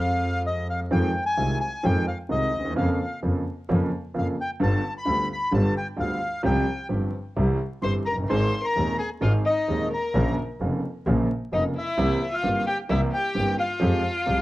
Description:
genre	tango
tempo	130 BPM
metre	4/4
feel	rubato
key	F minor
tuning	A4 = 445 Hz
part	bandoneon	melody	0.0-14.4 s	Eb5 to C6	-27 LUFS	left 1 dB	plate reverb
part	rich violin	second line	0.0-0.4, 7.8-14.4 s	Eb4 to C5	-30 LUFS	left 2 dB	none
part	clear concert grand piano	accompaniment	0.0-14.4 s	Eb1 to Ab4	-27 LUFS	right 1 dB	none
part	clear double bass	bass	0.0-14.4 s	F1 to F2	-26 LUFS	equal	none
room	moderate club reverb, RT60 0.6 s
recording	worn, warbling old tape, cassette tape, vinyl crackle, warbly pitch drift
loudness	-22 LUFS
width	side -17 dB against mid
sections	0.9-14.4 A section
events	none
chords	0.0 Fmadd9; 0.9 Fm7; 2.8 Bbm/F; 4.6 G7; 6.4 Csus4; 7.4 C; 8.3 Ab; 10.1 Bbm; 12.0 C7; 13.8 Fmadd9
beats	0.45 | 0.92 1.38 1.84 2.31 | 2.77 3.23 3.69 4.15 | 4.60 5.06 5.52 5.98 | 6.44 6.90 7.36 7.83 | 8.29 8.76 9.22 9.68 | 10.14 10.60 11.06 11.52 | 11.98 12.44 12.89 13.35 | 13.81 14.27

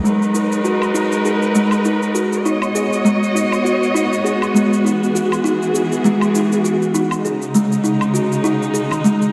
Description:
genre	organic downtempo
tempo	100 BPM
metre	4/4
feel	swing 57% on 16ths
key	G# minor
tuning	A4 = 440 Hz
part	warm studio string section	sustained chords	0.0-9.3 s	C#3 to D#5	-22 LUFS	equal	none
part	kalimba	arpeggios	0.0-9.2 s	D#3 to G#4	-19 LUFS	equal	low-pass filter, digital delay
part	bronze singing bowl	texture	0.0-9.3 s	G#3 to G#4	-32 LUFS	equal	none
part	shaker and woodblock	drums	0.1-9.3 s	none	-30 LUFS	equal	none
room	wet lush hall reverb, RT60 1.7 s, small room ambience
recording	big arena sound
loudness	-17 LUFS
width	mono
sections	0.0-9.3 A section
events	filter sweep on kalimba 0.0-9.3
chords	0.0 G#m; 2.4 B; 4.8 Emaj7; 7.2 C#5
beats	| 0.04 0.64 1.24 1.84 | 2.44 3.04 3.64 4.24 | 4.84 5.44 6.04 6.64 | 7.24 7.84 8.44 9.04

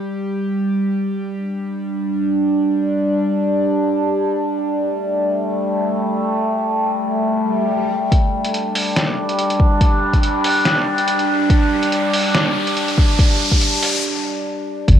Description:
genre	deep dubstep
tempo	142 BPM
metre	4/4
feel	swing 55% on 16ths, half-time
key	unclear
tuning	A4 = 441 Hz
part	overtone-sweeping drone	sustained chords	0.0-14.9 s	G3 to G4	-18 LUFS	equal	chorus, built-in reverb, cassette tape
part	swell, riser and sub drop	sound effects	7.4-15.0 s	none	-23 LUFS	left 1 dB	none
part	electronic kick drum	drums	8.1-15.0 s	none	-14 LUFS	equal	studio reverb, cassette tape
part	trip hop sampler-style drum kit	drums	8.1-15.0 s	hi-hat, snare drum	-22 LUFS	equal	overdrive, studio reverb, cassette tape
part	soft dub sub bass	bass	14.9-15.0 s	G1	-10 LUFS	equal	none
room	moderate studio ambience, RT60 0.5 s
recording	home recording on cassette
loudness	-16 LUFS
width	side -9 dB against mid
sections	0.0-8.1 A section; 8.1-14.9 B section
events	filter sweep on synth drone 0.0-8.1; swell 7.4-8.1; build-up 8.1-14.9; riser 9.7-14.0; break 14.0-14.9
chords	0.0 G5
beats	0.09 0.52 0.94 | 1.36 1.78 2.21 2.63 | 3.05 3.47 3.90 4.32 | 4.74 5.16 5.58 6.01 | 6.43 6.85 7.28 7.70 | 8.12 8.54 8.96 9.39 | 9.81 10.23 10.66 11.08 | 11.50 11.92 12.35 12.77 | 13.19 13.61 14.04 14.46 | 14.88

